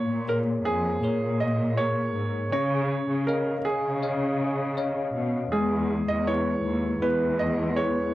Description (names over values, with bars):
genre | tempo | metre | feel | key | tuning
pop ballad | 80 BPM | 4/4 | straight | unclear | A4 = 440 Hz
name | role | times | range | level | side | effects
clear grand piano | melody | 0.0-8.1 s | G#4 to D#5 | -28 LUFS | right 2 dB | slapback echo
bell-like tine electric piano | accompaniment | 0.0-8.1 s | G#3 to E#5 | -29 LUFS | left 3 dB | medium stereo tremolo
muted symphonic cello section | bass | 0.0-8.1 s | D#2 to C#3 | -28 LUFS | equal | none
room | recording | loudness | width
light reverb | dry, close 1970s-style studio recording | -23 LUFS | side -15 dB against mid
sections
0.0-8.1 A section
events
none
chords
0.0 A#m7; 2.5 C#add9; 5.5 E